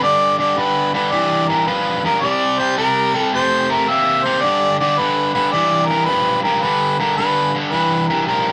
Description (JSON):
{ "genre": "blues", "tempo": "109 BPM", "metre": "4/4", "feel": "swing 66% on 8ths", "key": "G mixolydian", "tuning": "A4 = 440 Hz", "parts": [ { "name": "warm harmonica", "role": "melody", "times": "0.0-8.5 s", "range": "Bb4 to E5", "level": "-19 LUFS", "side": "equal", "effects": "none" }, { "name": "cranked stack guitar", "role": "riff", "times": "0.0-8.5 s", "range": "G2 to Bb3", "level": "-21 LUFS", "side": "equal", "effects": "overdrive" } ], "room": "moderate studio reverb, RT60 0.5 s", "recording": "none", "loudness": "-17 LUFS", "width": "mono", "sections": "0.0-8.5 A section", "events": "none", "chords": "0.0 G5; 2.2 C5; 4.4 G7", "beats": "| 0.04 0.59 1.14 1.69 | 2.24 2.79 3.33 3.88 | 4.43 4.98 5.53 6.08 | 6.63 7.18 7.73 8.28" }